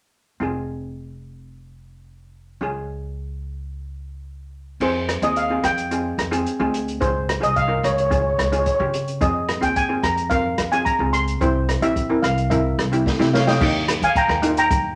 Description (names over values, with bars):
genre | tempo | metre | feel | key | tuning
calypso | 109 BPM | 4/4 | straight | F minor | A4 = 438 Hz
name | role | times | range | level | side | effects
steel pan | accompaniment | 0.4-14.8 s | Bb3 to Bb4 | -26 LUFS | equal | none
upright bass | bass | 0.4-15.0 s | F1 to Eb3 | -29 LUFS | equal | none
steel pan | melody | 4.8-15.0 s | C5 to C6 | -23 LUFS | equal | none
open jazz drum kit | drums | 4.8-14.8 s | crash cymbal, hi-hat, kick drum, rim click, snare drum | -27 LUFS | equal | none
room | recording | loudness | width
wet studio reverb, RT60 0.6 s | none | -21 LUFS | mono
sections
0.4-4.8 A section; 4.8-13.6 B section; 13.6-15.0 C section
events
drum fill 13.1-13.6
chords
0.4 Fm; 2.6 Db; 4.8 Fmadd9; 7.0 Dbmaj7; 9.2 Fm7; 11.4 C; 13.6 Eb